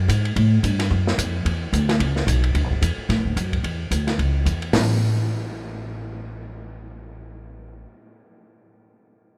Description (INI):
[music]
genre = jazz, small-group swing and bop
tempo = 220 BPM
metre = 4/4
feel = swing 58% on 8ths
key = unclear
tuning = A4 = 440 Hz
[part]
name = upright bass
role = bass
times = 0.0-7.8 s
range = A1 to A2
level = -24 LUFS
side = equal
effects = none
[part]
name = open jazz drum kit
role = drums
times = 0.1-4.8 s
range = hi-hat, kick drum, ride cymbal, snare drum, toms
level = -27 LUFS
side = equal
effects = none
[sound]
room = light reverb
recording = none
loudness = -22 LUFS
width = mono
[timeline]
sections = 0.0-2.5 A section; 2.5-4.7 B section; 4.7-6.9 C section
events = none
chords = none